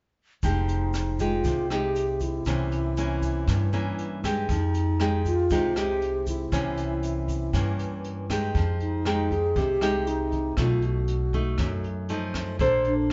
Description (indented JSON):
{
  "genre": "bossa nova",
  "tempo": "118 BPM",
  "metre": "4/4",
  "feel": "straight",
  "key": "F minor",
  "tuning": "A4 = 442 Hz",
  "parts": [
    { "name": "mellow hollow alto flute", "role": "melody", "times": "0.4-13.1 s", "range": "D4 to Ab4", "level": "-31 LUFS", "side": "equal", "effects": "none" },
    { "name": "nylon-string guitar", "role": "accompaniment", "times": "0.4-13.1 s", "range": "F#2 to C5", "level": "-31 LUFS", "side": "equal", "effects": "none" },
    { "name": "upright bass", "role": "bass", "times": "0.4-13.1 s", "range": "F1 to G2", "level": "-31 LUFS", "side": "equal", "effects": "none" },
    { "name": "jazz brush drum kit", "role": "drums", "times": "0.4-13.1 s", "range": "hi-hat, kick drum, rim click", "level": "-34 LUFS", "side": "equal", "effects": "none" },
    { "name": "egg shaker", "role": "percussion", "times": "0.4-8.6 s", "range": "none", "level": "-52 LUFS", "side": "equal", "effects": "none" }
  ],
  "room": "wet large studio reverb, RT60 1.4 s",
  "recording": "band playing live in one room, nothing above 7.7 kHz",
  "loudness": "-26 LUFS",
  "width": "mono",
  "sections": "0.4-8.5 A section; 8.5-13.1 B section",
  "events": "none",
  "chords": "0.4 Fm9; 2.5 C7b9; 4.5 Fm9; 6.5 C7b9; 8.5 Fm9; 10.6 B7#11; 12.6 Bbmaj9",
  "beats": "| 0.43 0.94 1.45 1.95 | 2.46 2.97 3.48 3.98 | 4.49 5.00 5.51 6.01 | 6.52 7.03 7.53 8.04 | 8.55 9.05 9.56 10.07 | 10.57 11.08 11.59 12.09 | 12.60 13.10"
}